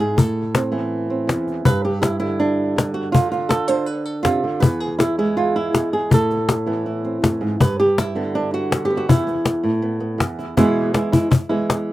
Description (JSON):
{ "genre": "flamenco", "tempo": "162 BPM", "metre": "4/4", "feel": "straight", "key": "unclear", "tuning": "A4 = 445 Hz", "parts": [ { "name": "flamenco guitar", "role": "melody", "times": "0.0-11.9 s", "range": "E2 to C5", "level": "-19 LUFS", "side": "right 1 dB", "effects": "slapback echo" }, { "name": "cajon", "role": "percussion", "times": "0.0-11.9 s", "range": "none", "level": "-17 LUFS", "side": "left 2 dB", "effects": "none" } ], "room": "little or no reverb", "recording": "recorded outdoors, with no room sound", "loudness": "-17 LUFS", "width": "side -15 dB against mid", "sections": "0.0-10.6 A section; 10.6-11.9 B section", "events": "none", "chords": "0.2 Amadd9; 1.7 G5; 3.1 Dm7; 4.6 E; 6.1 Amadd9; 7.6 G; 9.1 Esus4; 10.6 E" }